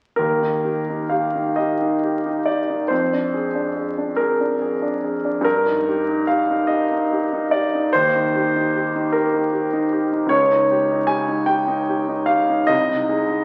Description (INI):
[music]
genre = classical, romantic nocturne for solo piano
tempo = 42-52 BPM (dotted quarters)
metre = 6/8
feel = rubato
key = Eb major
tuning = A4 = 440 Hz
[part]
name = clear concert grand piano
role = solo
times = 0.2-13.4 s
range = C2 to Ab5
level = -20 LUFS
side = equal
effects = none
[sound]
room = wet recital hall reverb, RT60 1.6 s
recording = very old 78 rpm record, vinyl crackle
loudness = -20 LUFS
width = mono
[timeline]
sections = 0.2-13.4 A section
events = none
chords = 0.2 Eb; 2.9 Bb7/F; 5.5 Eb/G; 7.9 Eb; 10.3 Eb7/Db; 12.7 Ab/C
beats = | 0.18 1.59 | 2.91 4.19 | 5.45 6.69 | 7.92 9.13 | 10.32 11.49 | 12.71